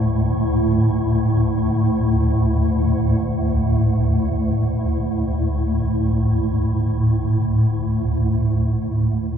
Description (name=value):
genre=ambient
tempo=free time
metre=none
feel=none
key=unclear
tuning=A4 = 440 Hz
part: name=swarming drone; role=solo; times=0.0-9.4 s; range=D2 to A2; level=-17 LUFS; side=equal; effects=built-in reverb, tape echo
room=wet huge ambient reverb, RT60 8.5 s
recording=dark, warm production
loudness=-17 LUFS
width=side -8 dB against mid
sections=0.0-8.1 A section; 8.1-9.4 B section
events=none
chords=0.0 D5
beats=free time